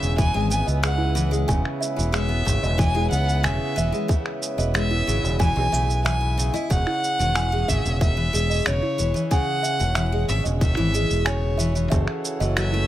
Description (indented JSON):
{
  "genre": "folktronica",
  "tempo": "92 BPM",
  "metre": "4/4",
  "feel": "straight",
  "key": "E major",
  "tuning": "A4 = 440 Hz",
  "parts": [
    { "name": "rich violin", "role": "melody", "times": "0.0-12.9 s", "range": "C#5 to G#5", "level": "-27 LUFS", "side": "equal", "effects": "tape echo" },
    { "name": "pedal harmonium", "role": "sustained chords", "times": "0.0-12.9 s", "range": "C#3 to A4", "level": "-34 LUFS", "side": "equal", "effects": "none" },
    { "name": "picked steel-string acoustic guitar", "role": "arpeggios", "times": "0.0-12.9 s", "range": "C#3 to E4", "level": "-28 LUFS", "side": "left 1 dB", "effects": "none" },
    { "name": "fingered electric bass", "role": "bass", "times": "0.0-12.8 s", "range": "E1 to C#2", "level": "-23 LUFS", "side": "equal", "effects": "none" },
    { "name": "electronic cabasa and finger snaps", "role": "drums", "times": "0.0-12.7 s", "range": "none", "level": "-28 LUFS", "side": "right 1 dB", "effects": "overdrive" },
    { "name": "kalimba", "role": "second line", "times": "0.2-12.9 s", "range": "E4 to G#5", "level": "-32 LUFS", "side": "right 4 dB", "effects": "tape echo" },
    { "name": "electronic kick drum", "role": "drums", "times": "0.2-12.1 s", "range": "none", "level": "-21 LUFS", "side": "equal", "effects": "none" }
  ],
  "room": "light reverb, studio reverb",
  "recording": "none",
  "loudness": "-20 LUFS",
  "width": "side -13 dB against mid",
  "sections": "0.0-12.9 A section",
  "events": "none",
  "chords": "0.0 E6; 6.7 C#m/E; 11.9 F#m7"
}